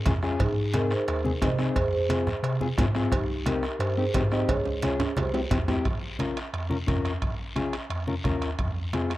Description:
latin, cumbia; 176 BPM; 4/4; straight; A4 = 437 Hz
marimba with medium mallets; melody; 0.0-5.7 s; Eb4 to Eb5; -30 LUFS; right 1 dB
mellow electric guitar; accompaniment; 0.1-9.1 s; C4 to Bb4; -30 LUFS; left 4 dB
mellow tine electric piano; bass; 0.1-9.1 s; Bb1 to C3; -30 LUFS; equal; medium stereo tremolo
bombo; percussion; 0.1-9.2 s; -31 LUFS; right 1 dB
congas; percussion; 0.1-9.1 s; -31 LUFS; right 1 dB
cowbell and timbales; percussion; 0.1-9.2 s; -35 LUFS; right 5 dB
guiro; percussion; 0.1-9.2 s; -41 LUFS; left 3 dB
studio reverb; dry, close 1970s-style studio recording; -24 LUFS; side -16 dB against mid
0.0-5.9 A section; 5.9-9.2 B section
drum fill 4.5-5.9
0.4 Ab; 1.8 Fm; 3.1 Cm; 4.5 Db; 5.2 C; 5.9 Bbm; 8.6 Fm

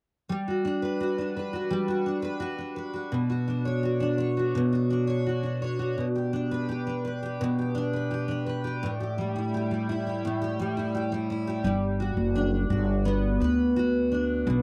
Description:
pop; 85 BPM; 4/4; straight; A4 = 439 Hz
picked steel-string acoustic guitar; accompaniment; 0.3-14.6 s; A2 to C#5; -28 LUFS; equal; double-tracked
upright bass; bass; 11.6-14.6 s; F#1 to D2; -29 LUFS; equal
little or no reverb; dry, close 1970s-style studio recording; -28 LUFS; mono
0.3-11.6 A section; 11.6-14.6 B section
0.3 Gmaj7; 3.1 Bmadd9; 6.0 G/B; 8.8 A5; 11.6 Gmaj7

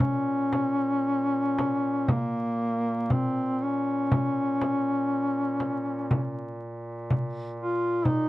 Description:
caucasian folk, Caucasian lament; 57-65 BPM; 4/4; rubato; Bb minor; A4 = 440 Hz
mellow duduk; melody; 0.0-8.3 s; Bb3 to F4; -25 LUFS; left 1 dB
warm duduk; drone; 0.0-8.3 s; Bb2; -36 LUFS; right 1 dB
frame drum; percussion; 0.0-8.3 s; -27 LUFS; equal
light reverb; close, detailed microphones, vinyl crackle; -24 LUFS; side -17 dB against mid
0.0-8.3 A section

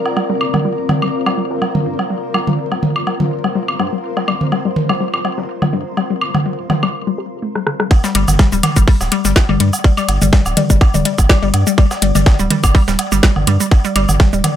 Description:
minimal techno; 124 BPM; 4/4; swing 54% on 16ths; G minor; A4 = 440 Hz
granular cloud pad; texture; 0.0-14.6 s; C4 to D5; -24 LUFS; left 2 dB; built-in reverb, sidechain pumping
electronic woodblock and toms; percussion; 0.1-14.5 s; -19 LUFS; right 2 dB; ping-pong delay
hollow square pluck; riff; 0.2-14.4 s; D3 to G4; -19 LUFS; left 3 dB; chorus, sidechain pumping, ping-pong delay
breakbeat sampler-style drum kit; drums; 0.2-14.6 s; hi-hat, ride cymbal, snare drum; -29 LUFS; right 1 dB; sidechain pumping on cymbals, high-pass filter on cymbals, low-pass filter on cymbals, high-pass filter on snare, low-pass filter on snare, sidechain pumping on hats, high-pass filter on hats, low-pass filter on hats
round analog bass; bass; 0.4-14.4 s; D1 to G2; -19 LUFS; equal; tube saturation, sidechain pumping, high-pass filter
garage drum kit; drums; 7.6-14.5 s; cabasa, hi-hat, rim click, snare drum; -18 LUFS; equal; low-pass filter on snare, low-pass filter on perc, low-pass filter on hats
electronic kick drum; drums; 7.9-14.3 s; -10 LUFS; equal
light reverb; -13 LUFS; side -10 dB against mid
0.0-7.9 A section; 7.9-14.6 B section
break 6.9-7.9; drum fill 7.5-7.9; drop 7.9-14.6
0.0 Gm; 7.9 G5

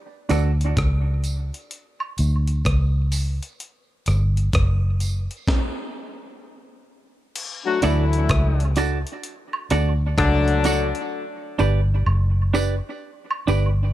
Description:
dub reggae; 64 BPM; 4/4; swing 64% on 16ths; D major; A4 = 440 Hz
clean electric guitar; accompaniment; 0.3-0.5, 7.8-13.7 s; D4 to D5; -25 LUFS; right 5 dB; tremolo, low-pass filter, tape echo
vintage muted fingered electric bass; bass; 0.3-13.9 s; F#1 to D2; -20 LUFS; equal
breakbeat sampler-style drum kit; drums; 0.3-11.1 s; crash cymbal, hi-hat, kick drum, rim click, snare drum; -25 LUFS; equal
tambourine and woodblock; percussion; 0.3-13.8 s; -31 LUFS; right 3 dB; tape echo
mellow horn section; second line; 7.7-10.9 s; D3 to F#4; -23 LUFS; left 5 dB; tape echo
digital ambience; -19 LUFS; side -14 dB against mid
0.0-7.4 A section; 7.4-13.9 B section
break 0.0-7.4; stop 5.5-7.4; part muted 11.1-13.9
0.0 N.C.; 7.4 D; 11.1 G

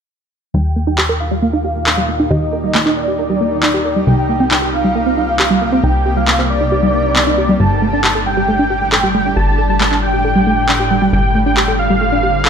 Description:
uplifting trance; 136 BPM; 4/4; straight; A4 = 438 Hz
dense compressed supersaw; melody; 0.5-12.5 s; D5 to A5; -18 LUFS; right 1 dB; low-pass filter, tape echo
shimmering ambient pad; sustained chords; 1.3-12.5 s; A2 to G4; -20 LUFS; left 1 dB; chorus, built-in reverb
wide unison pluck; arpeggios; 0.5-12.5 s; G3 to Bb4; -18 LUFS; right 2 dB; tape echo
plucky analog bass; bass; 0.5-12.5 s; G1 to Eb2; -19 LUFS; left 1 dB
electronic handclaps; drums; 1.0-12.5 s; -16 LUFS; left 1 dB
light reverb, digital ambience; -12 LUFS; side -7 dB against mid
0.5-12.5 A section
filter sweep on supersaw synth 0.5-12.5; filter sweep on synth pluck 0.5-12.5
0.5 Eb; 4.1 Cm7; 7.6 Gsus2

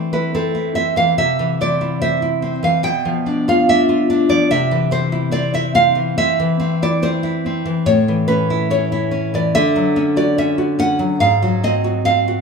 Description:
romantic piece for solo classical guitar; 71 BPM; 4/4; rubato; A4 = 440 Hz
nylon-string guitar; solo; 0.0-12.4 s; G#2 to G5; -14 LUFS; equal; tape echo
wet large studio reverb, RT60 1.2 s; band playing live in one room; -14 LUFS; side -5 dB against mid
0.0-12.4 A section
0.0 Am; 1.2 C; 2.8 Bdim; 4.5 C; 7.9 A; 9.6 Dmaj7; 11.2 G#7

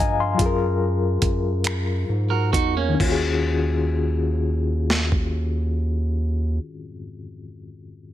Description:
slow six-eight R&B; 42-50 BPM (dotted quarters); 6/8; straight; Eb minor; A4 = 439 Hz
bright reed electric piano; accompaniment; 0.0-8.1 s; Eb3 to C6; -26 LUFS; left 5 dB; overdrive, medium tremolo
round analog bass; bass; 0.0-6.6 s; Eb2 to Ab2; -23 LUFS; equal
dusty soul sampler-style drum kit; drums; 0.4-5.3 s; crash cymbal, finger snaps, hi-hat, kick drum, snare drum; -24 LUFS; equal; overdrive, soft clipping on snare
clean electric guitar; second line; 2.3-3.2 s; Bb3 to Bb4; -25 LUFS; right 8 dB
light reverb; dense, heavily limited modern master; -20 LUFS; side -12 dB against mid
0.0-3.0 A section; 3.0-5.8 B section
slowing down 0.0-3.0
0.4 Gbmaj9; 3.0 Ebm11

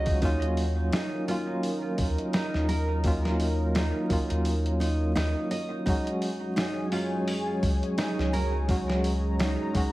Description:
trip hop; 85 BPM; 4/4; swing 57% on 16ths; Eb minor; A4 = 438 Hz
barky tine electric piano; accompaniment; 0.0-9.9 s; Gb3 to Gb4; -30 LUFS; equal; tremolo, tape echo
dark analog pad; sustained chords; 0.0-9.9 s; Gb3 to Bb5; -34 LUFS; equal; chorus, vintage 12-bit sampler grit
nylon-string guitar; arpeggios; 0.0-9.9 s; Eb4 to Eb5; -34 LUFS; right 2 dB; dub echo
round analog bass; bass; 0.0-9.6 s; Db2 to Eb2; -28 LUFS; equal; tube saturation
dusty soul sampler-style drum kit; drums; 0.1-9.9 s; hi-hat, kick drum, snare drum; -30 LUFS; equal
light reverb; echo-heavy mix, vinyl crackle; -25 LUFS; side -17 dB against mid
0.0-9.9 A section
0.2 Ebm7; 5.9 Dbsus4

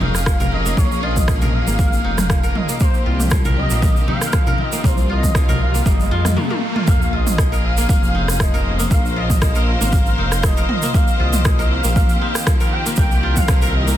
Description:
afro house; 118 BPM; 4/4; swing 54% on 16ths; Bb dorian; A4 = 441 Hz
expressive portamento lead; melody; 0.0-14.0 s; C5 to G5; -26 LUFS; right 1 dB; ensemble chorus, dub echo
clear symphonic string section; sustained chords; 0.0-14.0 s; Eb3 to C5; -27 LUFS; left 1 dB; sidechain pumping
kora; arpeggios; 0.0-14.0 s; F3 to Bb4; -25 LUFS; left 1 dB; sidechain pumping, dub echo
dark detuned saw bass; bass; 0.0-13.9 s; F1 to F2; -20 LUFS; equal; tube saturation, sidechain pumping
congas; percussion; 0.0-6.3 s; -26 LUFS; left 2 dB
deep house drum kit; drums; 0.1-13.6 s; rim click, toms; -25 LUFS; right 1 dB; overdrive, small room ambience
egg shaker; percussion; 0.1-14.0 s; -28 LUFS; right 5 dB
electronic kick drum; drums; 0.3-13.6 s; -17 LUFS; equal; overdrive, small room ambience
riser and sub drop; sound effects; 4.6-8.9 s; -28 LUFS; equal
small room ambience; dense, heavily limited modern master; -14 LUFS; side -12 dB against mid
0.0-6.9 A section; 6.9-14.0 B section
riser 4.6-6.9; break 6.4-6.9; drum fill 6.4-6.9; drop 6.9-14.0; impact 6.9-8.9
0.0 Bbm7; 2.8 Cm7; 6.9 Bbm9; 10.9 Cm7

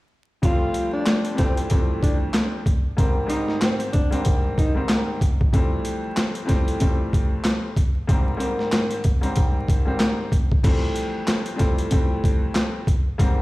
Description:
hip hop, boom-bap hip-hop; 94 BPM; 4/4; swing 59% on 16ths; F major; A4 = 441 Hz
breathy tenor saxophone; melody; 0.4-4.8 s; C4 to F4; -28 LUFS; equal; high-pass filter, low-pass filter, tape echo
clear grand piano; accompaniment; 0.4-13.4 s; F2 to C4; -26 LUFS; left 1 dB; high-pass filter, low-pass filter
boom bap sampler-style drum kit; drums; 0.4-13.4 s; crash cymbal, handclaps, hi-hat, kick drum, snare drum; -20 LUFS; equal; overdrive
studio ambience; played on a big sound system in a bare room, large studio reverb, vinyl crackle; -19 LUFS; side -19 dB against mid
0.4-10.6 A section; 10.6-13.4 B section
0.4 Fmaj9; 3.0 Abmaj9; 5.5 Fmaj9; 8.1 Abmaj9; 10.6 Fmaj9

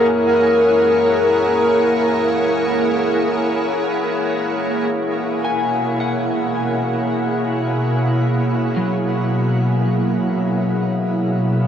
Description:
ambient; free time; A4 = 440 Hz
wooden-headed alto flute; melody; 0.0-3.8 s; A#4; -18 LUFS; left 1 dB; tape echo
soft additive organ-like pad; sustained chords; 0.0-11.7 s; B2 to F#5; -18 LUFS; equal; ensemble chorus, built-in reverb
electric guitar at the edge of break-up; arpeggios; 0.0-11.7 s; F#3 to G#5; -25 LUFS; equal; wide subtle chorus, tape echo
deep rumbling drone; bass; 0.0-4.8 s; F#2; -40 LUFS; equal; built-in reverb, phaser
wind-like tuned noise texture; texture; 0.0-4.9 s; barely audible
wet shimmer reverb, RT60 7.2 s; worn, warbling old tape, cassette tape, warbly pitch drift; -16 LUFS; side -8 dB against mid
0.0-4.9 A section; 4.9-11.7 B section
filter sweep on ambient pad 4.9-11.7
0.0 F#7; 4.9 Bsus2

